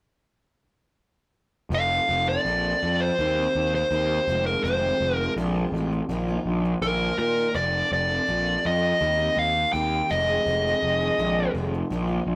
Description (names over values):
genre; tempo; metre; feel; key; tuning
rock; 82 BPM; 4/4; straight; unclear; A4 = 442 Hz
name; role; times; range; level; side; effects
dark smooth lead guitar; melody; 1.7-11.5 s; Bb4 to G5; -26 LUFS; equal; overdrive
picked steel-string acoustic guitar; arpeggios; 1.7-12.4 s; F2 to A4; -35 LUFS; equal; none
fuzz picked electric bass; bass; 1.7-12.4 s; F1 to Bb2; -29 LUFS; equal; overdrive
room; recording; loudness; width
light reverb; rough rehearsal-room recording, warm saturation; -24 LUFS; mono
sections
1.7-12.4 A section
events
none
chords
1.7 F6; 3.2 Cm/Eb; 4.3 Fm7; 6.1 Bbsus4; 7.6 F6; 9.0 Cm/Eb; 10.1 Fm7